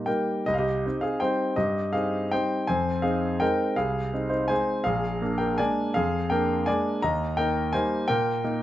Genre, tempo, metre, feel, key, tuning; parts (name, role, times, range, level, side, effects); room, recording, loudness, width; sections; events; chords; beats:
classical, piano waltz; 166 BPM; 3/4; uneven beats, rubato; A4 = 440 Hz
clear concert grand piano; solo; 0.0-8.6 s; Bb1 to Bb5; -23 LUFS; equal
light reverb; close, detailed microphones; -23 LUFS; side -13 dB against mid
0.5-8.6 A section
0.5 Cm; 2.7 Fm7; 4.9 Bb7; 7.0 Eb
0.07 | 0.48 0.85 1.23 | 1.59 1.95 2.32 | 2.68 3.04 3.42 | 3.79 4.14 4.51 | 4.87 5.22 5.59 | 5.95 6.31 6.68 | 7.03 7.38 7.74 | 8.09 8.44